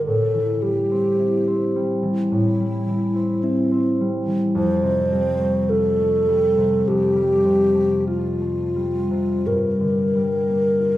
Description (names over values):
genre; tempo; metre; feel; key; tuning
classical, impressionist duo for alto flute and harp; 42-54 BPM; 4/4; rubato; unclear; A4 = 441 Hz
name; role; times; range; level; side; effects
mellow hollow wooden-headed alto flute; melody; 0.0-11.0 s; C4 to C5; -20 LUFS; equal; none
concert harp; accompaniment; 0.0-11.0 s; F2 to G4; -21 LUFS; equal; none
room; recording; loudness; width
wet recital hall reverb, RT60 1.6 s; recorded in a church or concert hall; -18 LUFS; side -15 dB against mid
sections
0.0-11.0 A section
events
none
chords
0.1 Am7; 4.6 Fadd9; 9.5 Gm7